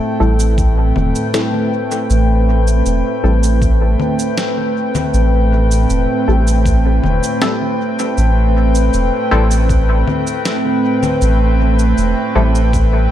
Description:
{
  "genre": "ambient dub",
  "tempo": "79 BPM",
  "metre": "4/4",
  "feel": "straight",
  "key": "A minor",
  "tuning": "A4 = 440 Hz",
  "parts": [
    { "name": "warbly tape-like pad", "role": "sustained chords", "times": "0.0-13.1 s", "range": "A2 to G5", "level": "-16 LUFS", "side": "equal", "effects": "chorus, built-in reverb" },
    { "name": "filtered dub chord stab", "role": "stabs", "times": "0.2-12.6 s", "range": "G3 to A4", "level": "-22 LUFS", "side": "left 2 dB", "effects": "chorus, dub echo" },
    { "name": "soft dub sub bass", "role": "bass", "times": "0.2-13.1 s", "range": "E1 to A1", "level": "-13 LUFS", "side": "equal", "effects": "none" },
    { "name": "electronic cabasa, congas and snare drum", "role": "drums", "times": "0.4-12.9 s", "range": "none", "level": "-23 LUFS", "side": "left 2 dB", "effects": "studio ambience, dub echo" },
    { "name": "electronic kick drum", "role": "drums", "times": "0.6-12.9 s", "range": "none", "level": "-18 LUFS", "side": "equal", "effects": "studio ambience" }
  ],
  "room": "moderate plate reverb, RT60 2.0 s",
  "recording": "dreamy mix soaked in reverb",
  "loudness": "-12 LUFS",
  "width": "side -11 dB against mid",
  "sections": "0.0-13.1 A section",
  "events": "none",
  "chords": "0.0 Am7"
}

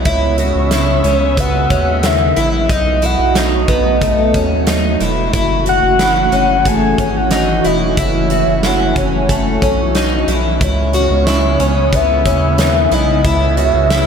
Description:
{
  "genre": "dream pop",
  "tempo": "91 BPM",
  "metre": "4/4",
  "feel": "straight",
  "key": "F# dorian",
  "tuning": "A4 = 440 Hz",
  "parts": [
    { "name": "phased analog pad", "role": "sustained chords", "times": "0.0-14.1 s", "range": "C#3 to E5", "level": "-19 LUFS", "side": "right 2 dB", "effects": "phaser, chorus" },
    { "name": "picked plugged-in twelve-string acoustic guitar", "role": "arpeggios", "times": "0.0-14.1 s", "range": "D#3 to F#4", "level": "-18 LUFS", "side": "left 2 dB", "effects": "lush chorus, dub echo" },
    { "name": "round analog bass", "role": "bass", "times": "0.0-14.1 s", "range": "E1 to D#2", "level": "-18 LUFS", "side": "equal", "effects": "none" },
    { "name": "soft octave-layered synth lead", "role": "melody", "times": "0.1-14.1 s", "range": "C#5 to G#5", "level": "-17 LUFS", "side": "left 1 dB", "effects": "chorus, phaser, dub echo" },
    { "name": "huge arena drum kit", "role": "drums", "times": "0.1-14.1 s", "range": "hi-hat, kick drum, snare drum", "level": "-19 LUFS", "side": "right 1 dB", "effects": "none" }
  ],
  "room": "light reverb, studio reverb",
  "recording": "echo-heavy mix",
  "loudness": "-11 LUFS",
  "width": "side -7 dB against mid",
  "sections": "0.0-14.1 A section",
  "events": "none",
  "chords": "0.1 C#m7; 2.7 B7; 5.3 F#m7; 10.6 C#m7"
}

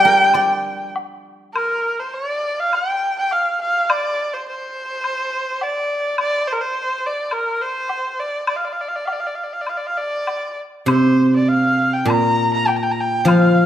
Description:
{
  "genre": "chinese traditional, Chinese chamber ensemble",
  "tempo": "102 BPM",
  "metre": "4/4",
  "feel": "rubato",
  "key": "G yu mode",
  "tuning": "A4 = 439 Hz",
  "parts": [
    { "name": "rich erhu", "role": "melody", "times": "0.0-13.7 s", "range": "Bb4 to Bb5", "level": "-19 LUFS", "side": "equal", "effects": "none" },
    { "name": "mellow hollow low xiao", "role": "second line", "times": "0.0-0.9 s", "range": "G5", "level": "-22 LUFS", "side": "left 3 dB", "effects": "none" },
    { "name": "guzheng", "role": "accompaniment", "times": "0.0-1.5, 10.9-13.7 s", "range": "Bb2 to D5", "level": "-16 LUFS", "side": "equal", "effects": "none" },
    { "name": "woodblock", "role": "percussion", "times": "0.3-13.4 s", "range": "none", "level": "-25 LUFS", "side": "left 2 dB", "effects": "none" }
  ],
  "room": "moderate recital hall reverb, RT60 1.6 s",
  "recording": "none",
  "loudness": "-17 LUFS",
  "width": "side -11 dB against mid",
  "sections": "0.0-1.5 A section; 1.5-13.7 B section",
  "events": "none",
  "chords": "none"
}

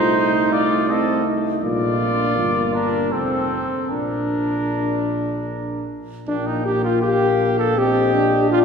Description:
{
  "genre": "classical, brass quintet",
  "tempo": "75-83 BPM",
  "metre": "3/4",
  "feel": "rubato",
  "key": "Bb major",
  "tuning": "A4 = 440 Hz",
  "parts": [
    { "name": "mellow trumpet", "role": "melody", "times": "0.0-8.6 s", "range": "A4 to G5", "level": "-25 LUFS", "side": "left 4 dB", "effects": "none" },
    { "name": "clear trumpet", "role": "second line", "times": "0.0-8.6 s", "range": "C4 to A4", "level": "-25 LUFS", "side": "right 5 dB", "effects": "none" },
    { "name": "dark trombone", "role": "accompaniment", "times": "0.0-8.6 s", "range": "A3 to D4", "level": "-24 LUFS", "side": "right 1 dB", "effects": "none" },
    { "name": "mellow French horn", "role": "accompaniment", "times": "0.0-8.6 s", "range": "Bb3 to A4", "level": "-23 LUFS", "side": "left 3 dB", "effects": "none" },
    { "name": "warm bass trombone", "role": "bass", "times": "0.0-8.6 s", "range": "F1 to C2", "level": "-25 LUFS", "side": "right 2 dB", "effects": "none" }
  ],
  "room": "wet church reverb, RT60 3.1 s",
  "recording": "recorded in a church or concert hall",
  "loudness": "-18 LUFS",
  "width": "side -6 dB against mid",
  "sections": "0.0-6.3 A section; 6.3-8.6 B section",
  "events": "none",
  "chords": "0.0 Adim/C; 1.6 Bb; 2.4 Gm; 3.1 F; 3.9 Bb; 6.3 Bb5; 7.8 Cm9/Bb"
}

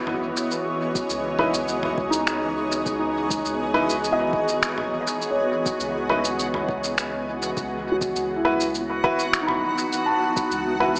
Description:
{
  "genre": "ambient dub",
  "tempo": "102 BPM",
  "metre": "4/4",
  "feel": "straight",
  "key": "C# minor",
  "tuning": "A4 = 442 Hz",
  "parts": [
    { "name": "granular cloud pad", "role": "sustained chords", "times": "0.0-11.0 s", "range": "E3 to F#5", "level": "-30 LUFS", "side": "equal", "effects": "built-in reverb" },
    { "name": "felt-muted upright piano", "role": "arpeggios", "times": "0.0-11.0 s", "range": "D#4 to B5", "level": "-29 LUFS", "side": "equal", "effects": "tape echo" },
    { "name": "soft dub sub bass", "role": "bass", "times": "0.0-11.0 s", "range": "G#1 to C#2", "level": "-41 LUFS", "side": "equal", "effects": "none" },
    { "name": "backwards swelling texture", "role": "texture", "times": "0.0-11.0 s", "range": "F#4", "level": "-35 LUFS", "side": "equal", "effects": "built-in reverb" },
    { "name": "lo-fi sampler-style drum kit", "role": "drums", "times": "0.1-11.0 s", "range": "cabasa, finger snaps, toms", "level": "-31 LUFS", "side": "equal", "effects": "dub echo" },
    { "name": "electronic kick drum", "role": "drums", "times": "1.0-10.5 s", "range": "none", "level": "-34 LUFS", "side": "equal", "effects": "none" },
    { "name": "clear upright piano", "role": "stabs", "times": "1.4-10.9 s", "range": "D#4 to B4", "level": "-28 LUFS", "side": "equal", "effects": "dub echo" }
  ],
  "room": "moderate concert hall reverb, RT60 2.2 s",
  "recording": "small speaker sound",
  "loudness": "-24 LUFS",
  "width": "mono",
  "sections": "0.0-11.0 A section",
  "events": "none",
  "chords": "0.0 C#m9; 7.6 Bsus4"
}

